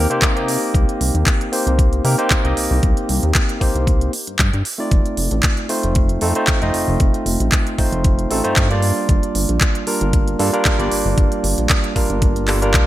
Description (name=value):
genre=nu-disco, nu disco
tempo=115 BPM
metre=4/4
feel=swing 54% on 16ths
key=C dorian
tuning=A4 = 440 Hz
part: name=barky tine electric piano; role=accompaniment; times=0.0-12.9 s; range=G3 to Eb5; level=-20 LUFS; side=equal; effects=ping-pong delay
part: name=chorused synth bass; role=bass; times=0.0-12.9 s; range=F1 to C3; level=-20 LUFS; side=equal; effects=sidechain pumping
part: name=pop drum kit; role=drums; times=0.1-12.9 s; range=handclaps, hi-hat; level=-21 LUFS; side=right 1 dB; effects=none
part: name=electronic kick drum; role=drums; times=0.2-12.9 s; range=none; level=-17 LUFS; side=equal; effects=none
room=light reverb, digital ambience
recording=bright 1980s-style digital production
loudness=-15 LUFS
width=side -14 dB against mid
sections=0.0-12.9 A section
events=none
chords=0.0 Cm7; 4.9 F7; 8.8 Gm7